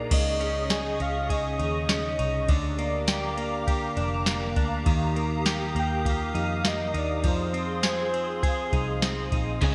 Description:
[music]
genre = dream pop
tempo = 101 BPM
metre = 4/4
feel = straight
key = unclear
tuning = A4 = 439 Hz
[part]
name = soft octave-layered synth lead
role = melody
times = 0.0-9.0 s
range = C5 to G5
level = -34 LUFS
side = equal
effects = chorus, shimmer reverb, delay
[part]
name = hollow soft pad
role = sustained chords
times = 0.0-9.7 s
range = G4 to Eb6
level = -36 LUFS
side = equal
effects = ensemble chorus, shimmer reverb
[part]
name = direct-recorded clean electric guitar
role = arpeggios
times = 0.0-9.7 s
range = Bb2 to Ab4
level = -33 LUFS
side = equal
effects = analog chorus, shimmer reverb, delay
[part]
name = vintage muted picked electric bass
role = bass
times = 0.0-9.7 s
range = F1 to F2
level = -33 LUFS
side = equal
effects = none
[part]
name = soft vintage rhythm box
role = drums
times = 0.1-9.7 s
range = crash cymbal, kick drum, ride cymbal, snare drum, tambourine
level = -30 LUFS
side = equal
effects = gated reverb
[part]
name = crunchy overdriven guitar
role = accompaniment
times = 9.6-9.7 s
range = Db3 to Ab4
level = -30 LUFS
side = equal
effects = tremolo, lush chorus
[sound]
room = moderate lush hall reverb, RT60 2.1 s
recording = bright 1980s-style digital production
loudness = -26 LUFS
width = mono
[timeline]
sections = 0.1-9.7 A section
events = none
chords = 0.1 Dbsus2; 2.5 Bb6/D; 4.9 Ebadd9; 7.2 Fm7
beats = | 0.11 0.71 1.30 1.90 | 2.49 3.08 3.68 4.27 | 4.87 5.46 6.05 6.65 | 7.24 7.83 8.43 9.02 | 9.62

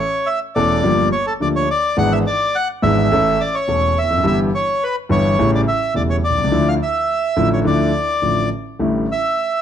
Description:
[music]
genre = tango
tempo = 105 BPM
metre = 4/4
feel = rubato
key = unclear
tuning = A4 = 441 Hz
[part]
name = bandoneon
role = melody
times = 0.0-9.6 s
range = A4 to F#5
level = -18 LUFS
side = equal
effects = none
[part]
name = dark concert grand piano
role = accompaniment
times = 0.6-9.1 s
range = E1 to A4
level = -17 LUFS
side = equal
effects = none
[sound]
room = moderate large studio reverb, RT60 1.2 s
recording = dark, warm production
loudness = -15 LUFS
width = side -9 dB against mid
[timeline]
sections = 0.0-8.8 A section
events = none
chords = 0.0 A; 0.8 Gm7; 2.0 E7/G#; 3.1 A; 4.3 Em/G; 5.4 A7; 6.5 Dmadd9; 8.8 A7sus4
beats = 0.28 0.85 1.42 | 1.99 2.55 3.12 3.69 | 4.26 4.83 5.39 5.96 | 6.53 7.10 7.67 8.25 | 8.82 9.39

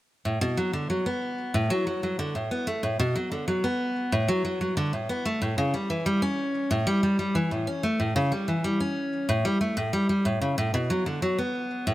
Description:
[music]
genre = folktronica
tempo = 93 BPM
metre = 4/4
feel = straight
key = B minor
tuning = A4 = 440 Hz
[part]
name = picked steel-string acoustic guitar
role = solo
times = 0.3-11.9 s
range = A2 to C#4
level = -24 LUFS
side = equal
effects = none
[sound]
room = light reverb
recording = none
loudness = -24 LUFS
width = side -15 dB against mid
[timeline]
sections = 0.3-10.6 A section; 10.6-11.9 B section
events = none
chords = none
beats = | 0.26 0.90 1.54 2.19 | 2.83 3.48 4.13 4.77 | 5.42 6.06 6.71 7.35 | 8.00 8.64 9.29 9.93 | 10.58 11.22 11.87

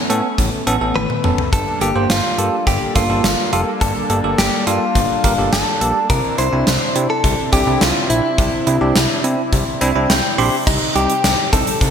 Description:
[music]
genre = synth-pop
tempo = 105 BPM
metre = 4/4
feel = straight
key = unclear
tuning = A4 = 441 Hz
[part]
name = direct-recorded clean electric guitar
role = melody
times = 0.0-11.9 s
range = Eb4 to C5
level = -20 LUFS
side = left 1 dB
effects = wide subtle chorus
[part]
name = brassy analog pad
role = sustained chords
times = 0.0-11.9 s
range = C3 to A4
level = -24 LUFS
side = equal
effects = chorus
[part]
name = bell-like tine electric piano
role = accompaniment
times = 0.1-11.7 s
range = G3 to C6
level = -21 LUFS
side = right 2 dB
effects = medium stereo tremolo
[part]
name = fat analog bass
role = bass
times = 0.1-11.9 s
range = E1 to C3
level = -21 LUFS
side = equal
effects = none
[part]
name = gated 80s drum kit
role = drums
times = 0.1-11.9 s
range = crash cymbal, hi-hat, kick drum, snare drum, toms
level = -19 LUFS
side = equal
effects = none
[sound]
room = moderate lush hall reverb, RT60 2.2 s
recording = bright 1980s-style digital production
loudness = -14 LUFS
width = side -7 dB against mid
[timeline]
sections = 0.0-10.7 A section; 10.7-11.9 B section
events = drum fill 1.0-1.5; tine electric piano fill 9.5-10.7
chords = 0.0 Aadd9; 1.5 Gmadd9; 6.1 Cadd9; 10.7 Cm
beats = 0.38 0.95 | 1.53 2.10 2.67 3.24 | 3.81 4.38 4.96 5.53 | 6.10 6.67 7.24 7.81 | 8.38 8.96 9.53 10.10 | 10.67 11.24 11.81

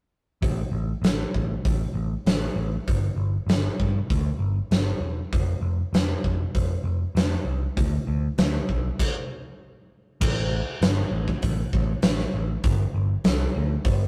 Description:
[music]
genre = quiet-loud alternative rock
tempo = 98 BPM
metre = 4/4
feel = straight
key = unclear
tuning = A4 = 441 Hz
[part]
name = overdriven picked electric bass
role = bass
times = 0.4-14.0 s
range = E1 to G2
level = -28 LUFS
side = equal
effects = none
[part]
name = big rock drum kit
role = drums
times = 0.4-14.0 s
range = crash cymbal, hi-hat, kick drum, snare drum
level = -27 LUFS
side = equal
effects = none
[sound]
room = little or no reverb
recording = rough rehearsal-room recording, tube saturation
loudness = -25 LUFS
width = mono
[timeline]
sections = 0.4-10.2 A section; 10.2-14.1 B section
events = stop 9.0-10.2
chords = none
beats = | 0.42 1.03 1.65 2.26 | 2.87 3.49 4.10 4.71 | 5.33 5.94 6.55 7.16 | 7.77 8.38 8.99 9.60 | 10.21 10.82 11.43 12.03 | 12.64 13.24 13.85

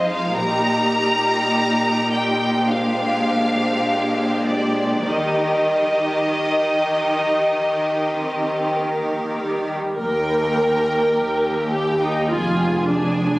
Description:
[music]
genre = classical, slow romantic movement for symphony orchestra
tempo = 48-53 BPM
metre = 4/4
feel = rubato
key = Eb major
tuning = A4 = 440 Hz
[part]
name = clear studio violin section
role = melody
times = 0.0-13.4 s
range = D5 to Bb5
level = -22 LUFS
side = equal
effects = none
[part]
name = rich studio violin section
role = second line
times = 0.0-13.4 s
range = F4 to G5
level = -26 LUFS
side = equal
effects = none
[part]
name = rich studio viola section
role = accompaniment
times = 0.0-13.4 s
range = G3 to Bb4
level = -23 LUFS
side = equal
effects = none
[part]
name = warm studio cello section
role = bass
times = 0.0-13.3 s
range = Eb2 to Eb3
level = -24 LUFS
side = equal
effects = none
[part]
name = rich studio double bass section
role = bass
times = 0.4-13.3 s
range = F1 to Eb2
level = -26 LUFS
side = equal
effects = none
[sound]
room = moderate scoring stage reverb, RT60 2.1 s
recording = recorded on a phone in the room, studio ambience, nothing above 11.0 kHz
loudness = -17 LUFS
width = side -20 dB against mid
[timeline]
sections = 0.0-10.0 A section; 10.0-13.4 A section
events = none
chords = 0.4 Eb/Bb; 2.7 Bb13; 5.1 Eb; 12.3 N.C.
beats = | 0.36 1.53 2.68 3.86 | 5.08 6.33 7.56 8.79 | 10.01 11.17 12.31

